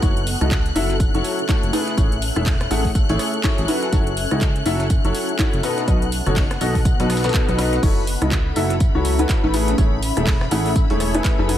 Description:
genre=piano house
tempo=123 BPM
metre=4/4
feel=swing 59% on 16ths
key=F# dorian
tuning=A4 = 439 Hz
part: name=rich symphonic string section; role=sustained chords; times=0.0-11.6 s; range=B5 to F#6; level=-30 LUFS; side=left 4 dB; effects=sidechain pumping
part: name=bright upright piano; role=riff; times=0.0-11.6 s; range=B2 to F#5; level=-22 LUFS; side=left 1 dB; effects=analog chorus, sidechain pumping, ping-pong delay
part: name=plucky analog bass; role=bass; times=0.0-11.6 s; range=E1 to C#2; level=-23 LUFS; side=equal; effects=sidechain pumping
part: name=dusty soul sampler-style drum kit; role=drums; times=0.0-11.6 s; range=hi-hat, snare drum, tambourine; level=-35 LUFS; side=equal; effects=sidechain pumping on perc, high-pass filter on perc, high-pass filter on snare, sidechain pumping on hats, high-pass filter on hats
part: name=electronic kick drum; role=drums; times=0.0-11.4 s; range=none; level=-19 LUFS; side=equal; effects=none
part: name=house drum kit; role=drums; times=0.0-11.6 s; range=crash cymbal, handclaps, hi-hat, rim click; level=-29 LUFS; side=right 1 dB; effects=none
part: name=granular cloud pad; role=texture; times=0.0-11.6 s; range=B3 to G#5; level=-29 LUFS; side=equal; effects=built-in reverb, ensemble chorus, sidechain pumping
room=light reverb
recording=none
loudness=-17 LUFS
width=side -11 dB against mid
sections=0.0-7.8 A section; 7.8-11.6 B section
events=drop 7.8-11.6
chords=0.0 F#m7; 1.7 Amaj7; 3.7 F#m7; 5.6 B7; 7.8 F#m7; 9.5 Amaj7

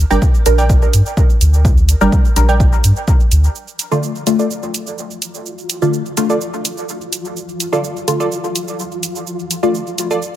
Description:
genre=dub techno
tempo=126 BPM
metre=4/4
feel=straight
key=D minor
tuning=A4 = 442 Hz
part: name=soft dub sub bass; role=bass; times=0.0-3.5 s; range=G1 to G2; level=-12 LUFS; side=equal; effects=sidechain pumping
part: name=wavetable chord stab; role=riff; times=0.1-10.2 s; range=F4 to G5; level=-23 LUFS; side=right 3 dB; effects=sidechain pumping, dub echo
part: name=filtered dub chord stab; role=stabs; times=0.1-9.8 s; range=D3 to Bb4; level=-19 LUFS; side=left 1 dB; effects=phaser, sidechain pumping, dub echo
part: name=electronic cabasa and hi-hat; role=drums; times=0.1-10.3 s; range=none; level=-23 LUFS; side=right 3 dB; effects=none
part: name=electronic kick drum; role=drums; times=0.2-3.2 s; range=none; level=-13 LUFS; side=equal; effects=none
part: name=flickering grainy texture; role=texture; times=4.1-10.4 s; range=F3 to F4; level=-27 LUFS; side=left 1 dB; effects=built-in reverb, sidechain pumping
room=light reverb, digital ambience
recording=none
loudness=-13 LUFS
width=side -12 dB against mid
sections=0.0-3.6 A section; 3.6-10.4 B section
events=none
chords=0.0 Gm; 3.6 Dm

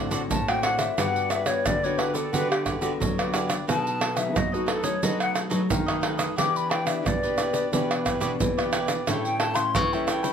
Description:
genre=samba and choro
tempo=89 BPM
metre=4/4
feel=straight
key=unclear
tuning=A4 = 440 Hz
part: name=cavaquinho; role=accompaniment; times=0.0-10.3 s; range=D4 to G5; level=-32 LUFS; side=right 3 dB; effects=none
part: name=nylon-string guitar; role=accompaniment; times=0.0-10.3 s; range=F#2 to G4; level=-32 LUFS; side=left 4 dB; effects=none
part: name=nylon-string guitar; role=bass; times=0.0-10.3 s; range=G2 to F#3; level=-30 LUFS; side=equal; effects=none
part: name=tube shaker, pandeiro, surdo and tamborim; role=percussion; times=0.1-10.3 s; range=none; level=-27 LUFS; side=right 3 dB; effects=none
part: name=hollow concert flute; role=melody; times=0.3-10.3 s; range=F#4 to D6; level=-27 LUFS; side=left 3 dB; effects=slapback echo
room=moderate studio reverb, RT60 0.6 s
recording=none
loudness=-22 LUFS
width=side -7 dB against mid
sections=0.0-10.3 A section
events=flute solo 0.0-10.3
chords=0.0 D7; 1.0 Gmaj7; 3.7 B7; 6.4 Em7; 9.1 A7

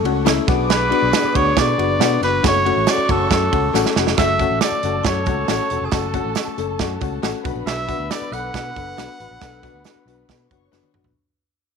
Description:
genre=uptempo 1960s-style soul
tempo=138 BPM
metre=4/4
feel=straight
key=F# minor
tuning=A4 = 440 Hz
part: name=warm saxophone section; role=second line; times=0.0-4.5, 7.7-8.0 s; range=C#3 to A4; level=-29 LUFS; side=right 14 dB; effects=tape echo
part: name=warm studio string section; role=second line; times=0.0-10.9 s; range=A4 to D6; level=-32 LUFS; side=left 1 dB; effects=none
part: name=clear upright piano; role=accompaniment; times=0.0-11.1 s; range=A3 to A4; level=-22 LUFS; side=left 11 dB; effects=none
part: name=fingered electric bass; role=bass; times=0.0-11.1 s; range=E1 to B2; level=-26 LUFS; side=right 1 dB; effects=none
part: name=natural country drum kit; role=drums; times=0.1-11.1 s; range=hi-hat, kick drum, ride cymbal, snare drum, toms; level=-22 LUFS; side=right 6 dB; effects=none
part: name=tambourine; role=percussion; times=0.3-10.8 s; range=none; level=-36 LUFS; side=right 19 dB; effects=none
part: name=clear trumpet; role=melody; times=0.7-10.7 s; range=G#4 to F#5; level=-22 LUFS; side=equal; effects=none
part: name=glockenspiel with brass mallets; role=second line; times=0.7-10.7 s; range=G#5 to F#6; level=-31 LUFS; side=right 14 dB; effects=none
room=light reverb, small room ambience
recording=1960s-style stereo with parts hard left and right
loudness=-16 LUFS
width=side -6 dB against mid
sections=0.0-4.2 A section; 4.2-11.2 B section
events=drum fill 3.7-4.2, 10.7-11.2; fade-out 4.2-11.2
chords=0.5 Bm; 2.4 F#m; 7.4 Bm

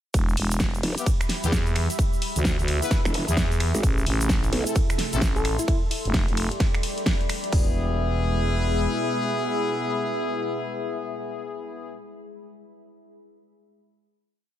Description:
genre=bass house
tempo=130 BPM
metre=4/4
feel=swing 62% on 16ths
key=unclear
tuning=A4 = 440 Hz
part: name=growling FM bass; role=bass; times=0.1-8.9 s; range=E1 to E2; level=-25 LUFS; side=equal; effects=sidechain pumping
part: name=big-room dance drum kit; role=drums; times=0.1-7.7 s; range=hi-hat, kick drum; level=-24 LUFS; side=equal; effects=studio reverb
part: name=big-room dance drum kit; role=drums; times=0.1-7.5 s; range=finger snaps, hi-hat, ride cymbal, snare drum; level=-29 LUFS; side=equal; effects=studio reverb
part: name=egg shaker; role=percussion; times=0.1-5.7 s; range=none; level=-35 LUFS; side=right 2 dB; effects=none
part: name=deep dark ambient pad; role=texture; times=0.6-12.0 s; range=G4 to C6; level=-32 LUFS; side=left 1 dB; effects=chorus, built-in reverb, sidechain pumping
part: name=growl bass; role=bass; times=0.8-4.6 s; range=E1 to B1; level=-25 LUFS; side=equal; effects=chorus, overdrive, sidechain pumping
part: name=clear horn section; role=stabs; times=1.0-12.0 s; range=B3 to B4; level=-30 LUFS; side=left 5 dB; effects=sidechain pumping, ping-pong delay
part: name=sweeping resonant pad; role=sustained chords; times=3.8-12.0 s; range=B2 to E4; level=-32 LUFS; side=right 2 dB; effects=chorus, sidechain pumping
part: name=soft struck synth lead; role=melody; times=5.4-5.8 s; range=E4 to A4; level=-31 LUFS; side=left 2 dB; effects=chorus, ping-pong delay
room=digital ambience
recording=none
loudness=-22 LUFS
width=side -11 dB against mid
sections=0.1-7.5 drop; 7.5-11.2 final chord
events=drop 0.1-7.5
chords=0.1 Em; 2.0 E; 3.8 Am; 5.7 G; 7.5 E

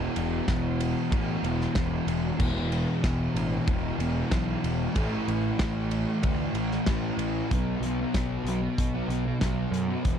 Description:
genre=rock, shoegaze and dream pop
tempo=94 BPM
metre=4/4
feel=straight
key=unclear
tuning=A4 = 440 Hz
part: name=fuzz guitar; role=riff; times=0.0-10.2 s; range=E2 to B3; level=-28 LUFS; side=equal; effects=distortion, analog chorus
part: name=fuzz picked electric bass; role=bass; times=0.0-10.2 s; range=E1 to F#2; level=-31 LUFS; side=equal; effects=overdrive
part: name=loose indie drum kit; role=drums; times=0.2-10.2 s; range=crash cymbal, hi-hat, kick drum, ride cymbal, snare drum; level=-30 LUFS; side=equal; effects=none
room=little or no reverb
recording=dark, warm production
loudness=-25 LUFS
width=side -8 dB against mid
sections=0.0-7.5 A section; 7.5-10.2 B section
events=none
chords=0.0 E5; 5.0 A5; 7.5 B5

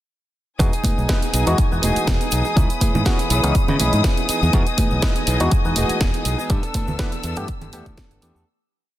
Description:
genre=filtered disco house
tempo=122 BPM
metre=4/4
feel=swing 54% on 16ths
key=E major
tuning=A4 = 442 Hz
part: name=barky reed electric piano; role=accompaniment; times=0.6-8.4 s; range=E3 to D#5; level=-26 LUFS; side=left 1 dB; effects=overdrive, phaser, sidechain pumping
part: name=dark studio string section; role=sustained chords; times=0.6-8.4 s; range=D#4 to E6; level=-27 LUFS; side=left 5 dB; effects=sidechain pumping
part: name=direct-recorded clean electric guitar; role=riff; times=0.6-8.5 s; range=E3 to A4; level=-26 LUFS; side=right 3 dB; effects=sidechain pumping
part: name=modern bright fingered electric bass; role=bass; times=0.6-8.4 s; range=E1 to C#3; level=-22 LUFS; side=equal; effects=sidechain pumping
part: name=electronic kick drum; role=drums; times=0.6-8.1 s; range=none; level=-19 LUFS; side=equal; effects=none
part: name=house drum kit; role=drums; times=0.6-8.3 s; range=hi-hat, snare drum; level=-26 LUFS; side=right 1 dB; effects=sidechain pumping on hats
part: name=tube shaker and congas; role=percussion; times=0.6-8.4 s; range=none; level=-29 LUFS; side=right 2 dB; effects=sidechain pumping on perc
room=little or no reverb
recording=dense, heavily limited modern master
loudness=-17 LUFS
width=side -14 dB against mid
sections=0.6-8.5 drop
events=drop 0.6-8.5; fade-out 5.8-8.5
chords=0.6 Emaj7; 2.6 C#m7; 4.3 Emaj7; 6.5 G69

